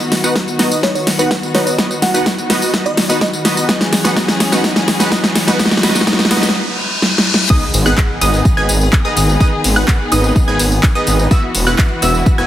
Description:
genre	EDM, festival progressive house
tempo	126 BPM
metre	4/4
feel	straight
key	unclear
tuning	A4 = 438 Hz
part	dark studio string section	sustained chords	0.0-12.5 s	D#3 to G#4	-22 LUFS	left 2 dB	sidechain pumping
part	big-room dance drum kit	drums	0.0-12.4 s	crash cymbal, handclaps, hi-hat, snare drum, tambourine	-16 LUFS	equal	none
part	riser, reverse cymbal and impact	sound effects	2.5-9.4 s	none	-22 LUFS	left 1 dB	none
part	supersaw stab	riff	0.2-12.5 s	B3 to G#5	-19 LUFS	right 1 dB	lush chorus, sidechain pumping, low-pass filter, digital delay
part	electronic kick drum	drums	0.4-12.4 s	none	-13 LUFS	equal	high-pass filter on kick, high-pass filter on room
part	bell-like FM electric piano	melody	0.8-3.3 s	B4 to F#5	-21 LUFS	right 1 dB	chorus, digital delay
part	wide unison pluck	arpeggios	7.5-12.5 s	D#6 to G#6	-20 LUFS	right 1 dB	cassette tape, sidechain pumping, digital delay
part	wide detuned saw bass	bass	7.7-12.5 s	E1 to G#1	-15 LUFS	equal	chorus, sidechain pumping
room	moderate scoring stage reverb, RT60 1.5 s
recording	heavily compressed radio sound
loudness	-11 LUFS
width	side -12 dB against mid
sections	0.0-7.5 A section; 7.5-12.5 B section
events	build-up 0.0-7.5; drum fill 0.0-6.5, 7.0-7.5; filter sweep on supersaw synth 0.0-7.5; riser 2.5-7.5; reverse cymbal 6.5-7.5; drop 7.5-12.5; impact 7.5-9.4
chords	0.0 B; 3.7 C#m; 7.5 G#m; 11.3 Esus2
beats	0.36 0.83 1.31 | 1.78 2.26 2.74 3.21 | 3.69 4.17 4.64 5.12 | 5.59 6.07 6.55 7.02 | 7.50 7.98 8.45 8.93 | 9.40 9.88 10.36 10.83 | 11.31 11.79 12.26

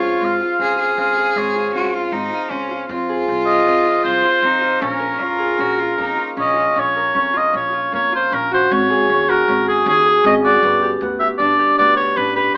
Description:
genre	contemporary instrumental, chamber music in an uneven meter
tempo	156 BPM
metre	5/4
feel	straight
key	Bb minor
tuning	A4 = 440 Hz
part	warm oboe	melody	0.0-12.6 s	Ab4 to F5	-19 LUFS	equal	none
part	bright cello	second line	0.0-6.7 s	Db4 to Ab4	-23 LUFS	equal	none
part	concert harp	arpeggios	0.0-12.6 s	Bb3 to Bb4	-23 LUFS	equal	none
part	upright bass	bass	0.0-12.5 s	G1 to F2	-31 LUFS	equal	none
room	wet studio reverb, RT60 0.8 s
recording	AM radio sound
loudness	-17 LUFS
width	mono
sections	0.0-6.8 A section; 6.8-12.6 B section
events	none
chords	0.0 Dbmaj7; 2.9 Fm7; 4.8 Bbm7; 6.8 Bbm; 8.7 Ab7sus4; 10.6 G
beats	0.21 0.59 | 0.98 1.36 1.74 2.13 2.51 | 2.89 3.28 3.66 4.05 4.43 | 4.82 5.21 5.59 5.99 6.38 | 6.78 7.17 7.55 7.94 8.33 | 8.71 9.10 9.48 9.87 10.25 | 10.63 11.02 11.40 11.78 12.17 | 12.55

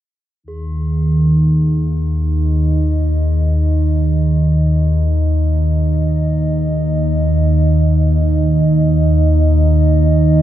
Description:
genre	dark ambient drone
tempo	free time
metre	none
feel	none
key	unclear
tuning	A4 = 439 Hz
part	analog drone	drone	0.6-10.4 s	Eb2 to Eb3	-13 LUFS	equal	wide subtle chorus
part	dark analog pad	sustained chords	0.5-10.4 s	Bb3 to Eb5	-22 LUFS	right 3 dB	chorus
part	bronze singing bowl	texture	0.5-10.4 s	Ab4	-40 LUFS	right 2 dB	none
room	wet cathedral reverb, RT60 5.7 s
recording	dark, warm production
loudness	-12 LUFS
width	side -12 dB against mid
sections	0.5-10.4 A section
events	fade-in on analog synth pad 0.5-10.4; fade-in on singing bowl 0.5-10.4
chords	0.5 Eb5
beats	free time

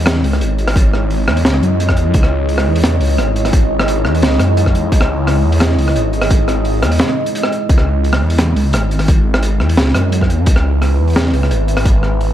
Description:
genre	half-time drum and bass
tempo	173 BPM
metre	4/4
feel	half-time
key	C# minor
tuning	A4 = 440 Hz
part	deep dark ambient pad	sustained chords	0.0-12.3 s	G#3 to E5	-20 LUFS	right 1 dB	chorus, built-in reverb, sidechain pumping
part	phased detuned saw bass	bass	0.0-12.3 s	G#1 to F#2	-15 LUFS	equal	phaser
part	crunchy breakbeat drum kit	drums	0.1-12.3 s	hi-hat, rim click, snare drum	-18 LUFS	equal	none
part	electronic kick drum	drums	0.8-11.9 s	none	-12 LUFS	equal	none
room	light reverb, small room ambience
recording	none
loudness	-12 LUFS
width	side -12 dB against mid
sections	0.0-12.3 A section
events	none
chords	0.0 C#madd9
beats	0.06 0.41 | 0.76 1.10 1.45 1.80 | 2.14 2.49 2.84 3.19 | 3.53 3.88 4.22 4.57 | 4.92 5.27 5.61 5.96 | 6.31 6.65 7.00 7.35 | 7.69 8.04 8.39 8.73 | 9.08 9.43 9.77 10.12 | 10.47 10.81 11.16 11.51 | 11.86 12.20

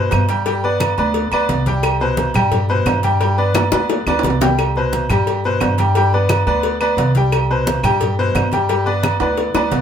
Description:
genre	latin, salsa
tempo	175 BPM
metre	4/4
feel	straight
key	unclear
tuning	A4 = 440 Hz
part	bright grand piano	accompaniment	0.0-9.8 s	B2 to G5	-19 LUFS	left 2 dB	none
part	upright bass	bass	0.0-9.8 s	C2 to G2	-20 LUFS	equal	none
part	claves	percussion	0.1-9.7 s	none	-27 LUFS	equal	none
part	congas	percussion	0.1-9.8 s	none	-24 LUFS	equal	none
part	cowbell and bongos	percussion	0.1-9.8 s	none	-24 LUFS	left 5 dB	none
part	timbales and agogo bells	percussion	0.1-9.8 s	none	-22 LUFS	right 8 dB	none
room	moderate studio reverb, RT60 0.5 s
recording	band playing live in one room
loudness	-14 LUFS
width	side -8 dB against mid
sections	0.0-9.8 A section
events	drum fill 3.6-4.6, 9.2-9.8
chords	0.5 G; 1.8 C5; 3.2 G; 4.6 C5; 6.0 G; 7.3 C5; 8.7 G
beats	0.12 | 0.46 0.81 1.15 1.49 | 1.84 2.18 2.52 2.87 | 3.21 3.55 3.90 4.24 | 4.58 4.92 5.27 5.61 | 5.95 6.30 6.64 6.98 | 7.33 7.67 8.01 8.36 | 8.70 9.04 9.38 9.73

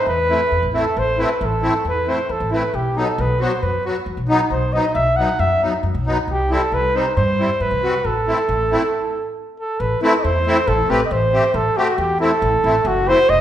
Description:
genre	klezmer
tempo	136 BPM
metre	4/4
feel	straight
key	A dorian sharp4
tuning	A4 = 440 Hz
part	mellow cornet	melody	0.0-13.4 s	F#4 to F#5	-18 LUFS	equal	none
part	upright bass	bass	0.1-13.4 s	E1 to G2	-23 LUFS	equal	none
part	musette accordion	accompaniment	0.3-13.2 s	F#3 to G4	-21 LUFS	equal	none
room	wet recital hall reverb, RT60 1.3 s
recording	recorded in a church or concert hall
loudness	-16 LUFS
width	side -11 dB against mid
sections	0.0-9.8 A section; 9.8-13.4 B section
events	stop 8.9-9.8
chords	0.0 Am; 2.7 B; 6.3 C; 8.1 Am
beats	0.07 0.52 | 0.96 1.41 1.85 2.30 | 2.74 3.19 3.63 4.07 | 4.52 4.96 5.40 5.85 | 6.29 6.73 7.17 7.61 | 8.05 8.49 8.93 9.37 | 9.81 10.24 10.68 11.12 | 11.55 11.99 12.42 12.86 | 13.29

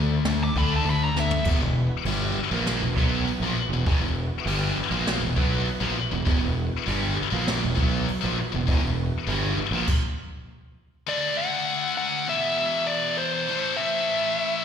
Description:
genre	hard rock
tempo	100 BPM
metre	4/4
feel	straight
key	E minor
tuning	A4 = 441 Hz
part	overdriven tonewheel organ	sustained chords	0.0-9.8 s	E3 to E5	-38 LUFS	equal	slow rotary speaker, chorus vibrato
part	crunchy overdriven guitar	riff	0.0-9.9 s	E2 to D4	-29 LUFS	right 9 dB	phaser, slapback echo
part	scooped high-gain guitar	riff	0.0-14.6 s	E2 to D4	-27 LUFS	left 10 dB	distortion, slapback echo
part	growling fingered electric bass	bass	0.0-9.9 s	E1 to D2	-27 LUFS	left 1 dB	overdrive
part	jazz brush drum kit	drums	0.2-10.0 s	crash cymbal, hi-hat, kick drum, snare drum, toms	-28 LUFS	equal	none
part	smooth overdriven lead guitar	melody	0.4-1.5, 11.1-14.6 s	C5 to D6	-26 LUFS	right 1 dB	slapback echo, tape echo
room	small room ambience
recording	live gig heard through the venue's PA, recital hall reverb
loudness	-22 LUFS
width	side -8 dB against mid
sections	0.0-1.5 A section; 1.5-11.1 B section; 11.1-14.6 C section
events	lead electric guitar solo 0.0-1.5; drum fill 1.2-1.5; stop 9.9-11.1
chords	0.0 D5; 1.5 Em; 11.1 D; 12.3 E5; 13.5 A5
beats	0.25 0.86 | 1.46 2.06 2.67 3.27 | 3.87 4.47 5.07 5.67 | 6.27 6.88 7.48 8.08 | 8.68 9.28 9.88 10.48 | 11.08 11.68 12.28 12.88 | 13.49 14.09

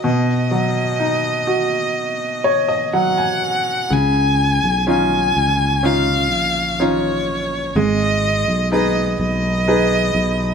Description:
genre	pop ballad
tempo	62 BPM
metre	4/4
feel	straight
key	unclear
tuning	A4 = 440 Hz
part	warm violin	melody	0.0-10.5 s	Db5 to Ab5	-20 LUFS	equal	none
part	bright upright piano	accompaniment	0.0-10.5 s	B2 to Ab5	-19 LUFS	equal	none
part	sustaining fretless electric bass	bass	3.9-10.5 s	Ab1 to Db2	-21 LUFS	equal	none
room	moderate studio ambience, RT60 0.5 s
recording	band playing live in one room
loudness	-15 LUFS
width	side -6 dB against mid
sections	0.0-3.9 A section; 3.9-10.5 B section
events	upright piano fill 2.0-3.9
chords	0.0 B; 3.9 Dbadd9; 7.8 Abm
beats	| 0.04 1.00 1.97 2.94 | 3.92 4.89 5.85 6.81 | 7.77 8.72 9.68

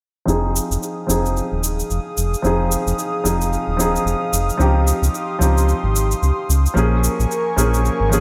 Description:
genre	organic downtempo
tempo	111 BPM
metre	4/4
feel	swing 59% on 16ths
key	F minor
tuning	A4 = 440 Hz
part	felt-muted upright piano	accompaniment	0.3-8.2 s	F3 to Ab4	-24 LUFS	equal	low-pass filter, digital delay
part	warm analog pad	sustained chords	0.3-8.2 s	G4 to Eb6	-27 LUFS	equal	chorus
part	round analog bass	bass	0.3-8.2 s	Eb1 to Db2	-20 LUFS	equal	none
part	cabasa	drums	0.3-8.2 s	none	-28 LUFS	equal	overdrive, small room ambience
room	moderate plate reverb, RT60 2.3 s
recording	bright 1980s-style digital production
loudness	-19 LUFS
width	mono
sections	0.3-8.2 A section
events	filter sweep on analog synth bass 0.3-8.2; filter sweep on felt piano 0.3-8.2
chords	0.3 Fm7; 4.6 Dbmaj9#11; 6.8 Bbm7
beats	| 0.27 0.81 1.35 1.90 | 2.44 2.98 3.52 4.06 | 4.60 5.14 5.68 6.22 | 6.76 7.30 7.84

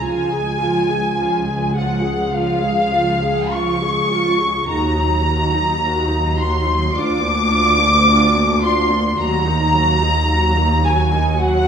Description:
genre	classical, slow romantic movement for string orchestra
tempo	53 BPM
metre	4/4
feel	rubato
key	Db major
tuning	A4 = 441 Hz
part	muted studio violin section	melody	0.0-11.7 s	F5 to D6	-20 LUFS	left 2 dB	none
part	muted studio violin section	second line	0.0-11.7 s	F5 to D6	-22 LUFS	equal	none
part	muted studio viola section	accompaniment	0.0-11.7 s	Eb3 to Ab4	-21 LUFS	right 1 dB	none
part	muted studio cello section	bass	0.0-11.7 s	Db2 to Eb2	-23 LUFS	right 1 dB	none
part	muted studio double bass section	bass	0.0-11.7 s	Db2 to Eb2	-22 LUFS	right 1 dB	none
room	wet recital hall reverb, RT60 1.8 s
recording	recorded in a church or concert hall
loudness	-15 LUFS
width	side -7 dB against mid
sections	0.0-11.7 A section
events	none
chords	0.0 Db; 4.7 Ebm; 7.0 Bb/D; 9.2 Ebm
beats	| 0.03 1.19 2.33 3.54 | 4.69 5.82 6.97 8.09 | 9.21 10.31 11.40

